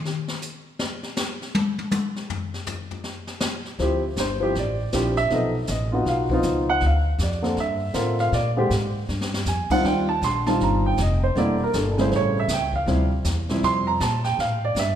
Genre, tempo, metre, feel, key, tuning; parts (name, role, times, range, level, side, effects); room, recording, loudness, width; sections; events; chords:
jazz piano trio; 159 BPM; 4/4; swing 64% on 8ths; D minor; A4 = 439 Hz
jazz brush drum kit; drums; 0.1-15.0 s; brushed snare drum, crash cymbal, hi-hat, kick drum, snare drum, toms; -29 LUFS; left 2 dB
warm baby grand piano; melody; 3.8-15.0 s; C3 to C6; -22 LUFS; right 1 dB
upright bass; bass; 3.8-15.0 s; E1 to Bb2; -25 LUFS; equal
wet recital hall reverb, RT60 1.7 s; recorded in a church or concert hall; -21 LUFS; side -10 dB against mid
0.0-3.8 A section; 3.8-15.0 B section
drum solo 0.0-3.8; drum fill 9.1-9.5
0.0 N.C.; 3.8 Dm11; 5.3 B7#11; 6.8 Bbmaj9; 8.3 Bb7(no3); 9.8 Eb69; 11.4 Em7b5; 12.1 A7; 12.9 Dm11; 14.4 G7sus2